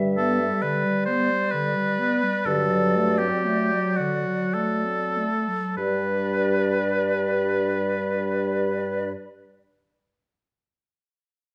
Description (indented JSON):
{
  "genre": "classical, slow romantic movement for wind quintet",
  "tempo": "46-70 BPM",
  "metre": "3/4",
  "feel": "rubato",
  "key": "G major",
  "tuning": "A4 = 439 Hz",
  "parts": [
    { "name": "silver concert flute", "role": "melody", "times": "0.0-9.1 s", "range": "D5 to E5", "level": "-33 LUFS", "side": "equal", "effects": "none" },
    { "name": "clear French horn", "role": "accompaniment", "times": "0.0-9.1 s", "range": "F#3 to G3", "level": "-32 LUFS", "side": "equal", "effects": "none" },
    { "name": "clear clarinet", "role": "accompaniment", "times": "0.0-9.1 s", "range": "D3 to D4", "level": "-31 LUFS", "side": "equal", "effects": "none" },
    { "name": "mellow bassoon", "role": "bass", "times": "0.0-9.1 s", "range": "G2", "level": "-28 LUFS", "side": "equal", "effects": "none" },
    { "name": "clear oboe", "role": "second line", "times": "0.2-9.1 s", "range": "F#4 to C5", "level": "-28 LUFS", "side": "equal", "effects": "none" }
  ],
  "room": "wet stone room reverb, RT60 1.2 s",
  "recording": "none",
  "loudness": "-24 LUFS",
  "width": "mono",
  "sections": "0.0-5.8 A section; 5.8-9.2 B section",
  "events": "slowing down 0.0-5.8",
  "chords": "0.0 G; 2.5 D7/G; 5.8 G",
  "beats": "0.62 1.52 | 2.45 3.44 4.54 | 5.77 6.93 8.06"
}